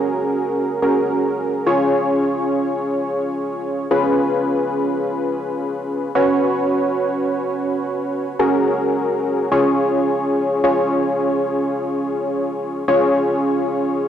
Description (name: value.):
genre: pop.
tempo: free time.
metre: none.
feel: none.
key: Db mixolydian.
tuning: A4 = 440 Hz.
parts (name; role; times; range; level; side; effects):
warm analog keys; solo; 0.0-14.1 s; Db4 to Db5; -17 LUFS; equal; chorus, tape echo.
room: moderate recital hall reverb, RT60 1.5 s, digital ambience.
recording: dry, gritty hardware recording, cassette tape.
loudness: -17 LUFS.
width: side -9 dB against mid.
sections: 0.0-10.6 A section; 10.6-14.1 A section.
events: none.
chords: 0.0 Gbadd9; 1.7 Db; 6.2 Cbsus2; 8.4 Gbadd9; 9.5 Db.